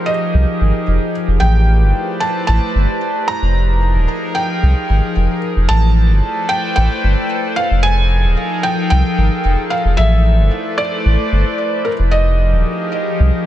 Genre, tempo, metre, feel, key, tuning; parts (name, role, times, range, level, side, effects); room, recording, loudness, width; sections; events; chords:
IDM; 112 BPM; 4/4; straight; A4 = 440 Hz
felt-muted upright piano; melody; 0.0-13.5 s; Bb4 to Bb5; -20 LUFS; right 1 dB; digital delay
warbly tape-like pad; sustained chords; 0.0-13.5 s; F3 to D5; -20 LUFS; left 1 dB; chorus, built-in reverb
round analog bass; bass; 0.3-13.3 s; Eb1 to C2; -13 LUFS; equal
small room ambience; -13 LUFS; side -12 dB against mid
0.0-13.5 A section
0.0 Fm11; 1.4 Am11; 3.3 Fm11; 5.7 Am11; 7.6 Fm11; 10.0 Amadd9; 11.9 Fm11